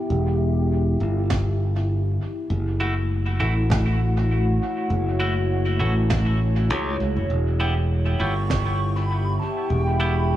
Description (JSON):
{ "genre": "ambient dub", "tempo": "100 BPM", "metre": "4/4", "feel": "swing 55% on 16ths", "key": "E dorian", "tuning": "A4 = 440 Hz", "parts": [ { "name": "warbly tape-like pad", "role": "sustained chords", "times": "0.0-10.4 s", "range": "A3 to G5", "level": "-27 LUFS", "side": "left 2 dB", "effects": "chorus, built-in reverb" }, { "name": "modern bright fingered electric bass", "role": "bass", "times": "0.1-10.4 s", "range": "E1 to C#2", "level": "-21 LUFS", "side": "equal", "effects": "none" }, { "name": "electronic kick drum", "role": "drums", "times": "1.3-8.6 s", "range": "none", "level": "-26 LUFS", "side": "equal", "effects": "overdrive" }, { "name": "snare drum", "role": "drums", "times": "1.3-8.6 s", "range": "none", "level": "-34 LUFS", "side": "right 4 dB", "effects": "dub echo" }, { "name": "clean electric guitar", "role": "stabs", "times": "2.8-10.1 s", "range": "A3 to G4", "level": "-30 LUFS", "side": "right 1 dB", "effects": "spring reverb, low-pass filter, dub echo" }, { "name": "breathy mellow silver concert flute", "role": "melody", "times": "8.2-10.4 s", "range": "G5 to C#6", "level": "-30 LUFS", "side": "right 1 dB", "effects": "dub echo" } ], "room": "light reverb", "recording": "small room ambience", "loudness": "-20 LUFS", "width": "side -13 dB against mid", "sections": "0.0-10.4 A section", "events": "none", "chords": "0.0 Em; 2.5 F#m7; 7.3 Em", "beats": "| 0.10 0.70 1.30 1.90 | 2.50 3.10 3.70 4.30 | 4.90 5.50 6.10 6.70 | 7.30 7.90 8.50 9.10 | 9.70 10.30" }